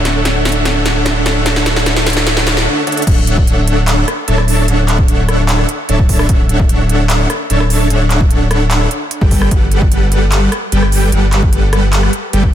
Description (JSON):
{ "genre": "future bass", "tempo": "149 BPM", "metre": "4/4", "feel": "half-time", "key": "D major", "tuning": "A4 = 440 Hz", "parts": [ { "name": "dense compressed supersaw", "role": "riff", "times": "0.0-12.5 s", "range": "G3 to A5", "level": "-16 LUFS", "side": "equal", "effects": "sidechain pumping, digital delay" }, { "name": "saturated sub bass", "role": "bass", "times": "0.0-12.5 s", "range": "D1 to G1", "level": "-14 LUFS", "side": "equal", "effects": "sidechain pumping" }, { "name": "big-room dance drum kit", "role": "drums", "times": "0.1-12.4 s", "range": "crash cymbal, handclaps, hi-hat, rim click, snare drum", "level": "-18 LUFS", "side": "equal", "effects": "none" }, { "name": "electronic kick drum", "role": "drums", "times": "3.1-12.5 s", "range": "none", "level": "-12 LUFS", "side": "equal", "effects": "none" } ], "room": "light reverb, digital ambience", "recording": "dense, heavily limited modern master", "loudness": "-10 LUFS", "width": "side -11 dB against mid", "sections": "0.0-3.1 A section; 3.1-12.5 B section", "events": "build-up 0.0-3.1; drum fill 0.0-2.7, 2.9; break 2.7-3.1; drop 3.1-12.5", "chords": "0.0 Dmaj9; 9.3 Gmaj7" }